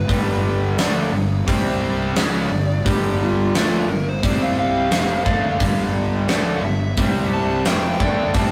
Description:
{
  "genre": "blues rock power trio and southern rock",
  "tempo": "87 BPM",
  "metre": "4/4",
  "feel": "straight",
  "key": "G mixolydian",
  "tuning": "A4 = 440 Hz",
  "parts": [
    { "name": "overdriven slide guitar", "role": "melody", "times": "0.0-8.5 s", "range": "F4 to A5", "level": "-28 LUFS", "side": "equal", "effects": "analog delay" },
    { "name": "distorted electric guitar", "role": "riff", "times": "0.0-8.5 s", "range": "F2 to D4", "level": "-24 LUFS", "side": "equal", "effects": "distortion" },
    { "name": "fuzz fingered electric bass", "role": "bass", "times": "0.0-8.5 s", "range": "F1 to D2", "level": "-28 LUFS", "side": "equal", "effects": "overdrive" },
    { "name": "huge arena drum kit", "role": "drums", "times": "0.1-8.5 s", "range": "hi-hat, kick drum, snare drum", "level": "-23 LUFS", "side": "equal", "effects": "none" }
  ],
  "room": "moderate stone room reverb, RT60 0.9 s",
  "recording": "rough rehearsal-room recording, warm saturation",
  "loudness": "-19 LUFS",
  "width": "mono",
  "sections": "0.0-8.5 A section",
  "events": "electric slide guitar solo 0.0-8.5",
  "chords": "0.0 G; 1.5 C5; 2.2 G5; 4.2 C5; 4.9 G5; 7.0 C5; 7.7 G5"
}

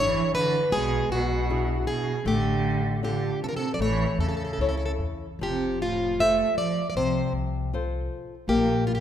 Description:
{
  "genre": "fado-style ballad",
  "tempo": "78 BPM",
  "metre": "4/4",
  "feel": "rubato",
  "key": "unclear",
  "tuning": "A4 = 439 Hz",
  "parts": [
    { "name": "picked plugged-in twelve-string acoustic guitar", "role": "melody", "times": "0.0-9.0 s", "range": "F4 to E5", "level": "-26 LUFS", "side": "equal", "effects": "none" },
    { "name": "warm cello", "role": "second line", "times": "0.0-9.0 s", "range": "A2 to A3", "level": "-30 LUFS", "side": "right 4 dB", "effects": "none" },
    { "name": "flamenco guitar", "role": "accompaniment", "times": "0.0-9.0 s", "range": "C3 to C#5", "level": "-30 LUFS", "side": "left 4 dB", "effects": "none" },
    { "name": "upright bass", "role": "bass", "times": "0.0-9.0 s", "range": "F1 to E2", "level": "-30 LUFS", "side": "left 1 dB", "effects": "none" }
  ],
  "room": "moderate scoring stage reverb, RT60 1.8 s",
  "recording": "minimal, uncompressed stereo recording",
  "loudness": "-23 LUFS",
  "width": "side -10 dB against mid",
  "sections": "0.0-9.0 A section",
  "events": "none",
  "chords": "0.0 E7/G#; 2.3 Dm/A; 3.8 A; 5.4 F; 8.5 N.C."
}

